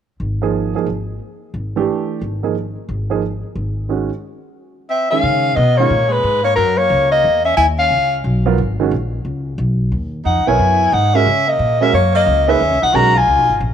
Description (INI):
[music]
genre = jazz, small-group swing and bop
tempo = 179 BPM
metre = 4/4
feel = swing 64% on 8ths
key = unclear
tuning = A4 = 439 Hz
[part]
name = upright bass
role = bass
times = 0.2-13.7 s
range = Ab1 to Db3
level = -19 LUFS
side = left 1 dB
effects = none
[part]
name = warm baby grand piano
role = accompaniment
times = 0.4-5.9, 8.5-13.1 s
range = Eb3 to Db5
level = -20 LUFS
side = right 8 dB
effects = none
[part]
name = breathy soprano saxophone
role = melody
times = 4.9-8.2, 10.3-13.6 s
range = Bb4 to Bb5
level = -14 LUFS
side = left 3 dB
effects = none
[part]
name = breathy tenor saxophone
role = second line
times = 4.9-8.2, 10.2-13.6 s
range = Gb3 to Gb4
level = -22 LUFS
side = right 10 dB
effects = none
[sound]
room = light reverb, small room ambience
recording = 1960s-style stereo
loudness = -14 LUFS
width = side -8 dB against mid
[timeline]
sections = 0.0-5.2 A section; 5.2-13.7 B section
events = none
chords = 0.0 Absus2; 1.2 G5; 1.9 Gm13; 2.5 N.C.; 3.9 Ebm7; 4.6 Eb7sus4; 5.2 Db13; 6.6 Gb6; 7.9 Db7sus2; 10.6 Gb13